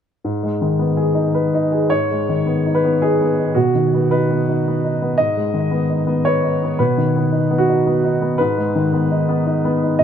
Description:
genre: neoclassical minimalist piano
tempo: 112 BPM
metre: 3/4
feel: rubato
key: G# minor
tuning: A4 = 440 Hz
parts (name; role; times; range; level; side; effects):
- warm upright piano; solo; 0.2-10.0 s; G#2 to D#5; -15 LUFS; equal; tape echo
room: light reverb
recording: close, detailed microphones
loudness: -15 LUFS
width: side -8 dB against mid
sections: 0.3-1.9 A section; 1.9-10.0 B section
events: none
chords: 0.3 G#m; 3.5 B; 5.2 G#m; 6.8 B; 8.4 G#m

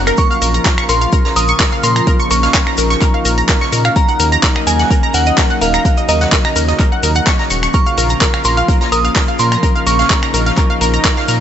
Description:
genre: progressive house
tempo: 127 BPM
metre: 4/4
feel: straight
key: Bb minor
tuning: A4 = 440 Hz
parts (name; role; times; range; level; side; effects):
- glassy synth bell; melody; 0.0-11.4 s; Eb5 to Eb6; -19 LUFS; right 2 dB; chorus, dub echo
- lush unison pad; sustained chords; 0.0-11.4 s; Db3 to F4; -21 LUFS; left 1 dB; chorus, sidechain pumping
- round analog bass; bass; 0.0-11.4 s; Eb1 to Bb2; -16 LUFS; equal; tube saturation, sidechain pumping
- analog pluck; arpeggios; 0.1-11.3 s; Bb4 to Db6; -18 LUFS; equal; analog chorus, sidechain pumping, dub echo
- deep house drum kit; drums; 0.1-11.4 s; finger snaps, handclaps, hi-hat; -19 LUFS; equal; none
- tube shaker; percussion; 0.1-11.4 s; none; -25 LUFS; left 4 dB; none
- electronic kick drum; drums; 0.2-11.1 s; none; -14 LUFS; equal; none
- vintage drum kit; drums; 0.2-11.4 s; hi-hat, snare drum; -26 LUFS; right 2 dB; none
room: light reverb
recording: nothing above 8.0 kHz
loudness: -11 LUFS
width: side -9 dB against mid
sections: 0.0-11.4 A section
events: none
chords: 0.2 Bbm; 4.0 Ebm7; 7.7 Bbm

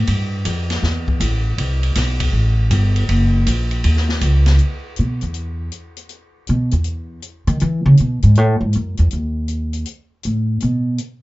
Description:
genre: modal jazz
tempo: 160 BPM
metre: 4/4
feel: swing 66% on 8ths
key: B mixolydian from 4.6 s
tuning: A4 = 440 Hz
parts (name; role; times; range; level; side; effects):
- upright bass; bass; 0.0-11.0 s; F#1 to E3; -15 LUFS; equal; none
- open jazz drum kit; drums; 0.1-11.1 s; hi-hat, kick drum, ride cymbal, snare drum; -25 LUFS; left 1 dB; none
room: little or no reverb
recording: nothing above 7.7 kHz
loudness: -15 LUFS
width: side -19 dB against mid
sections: 0.0-4.6 A section; 4.6-11.2 B section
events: upright bass solo 4.6-11.2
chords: none

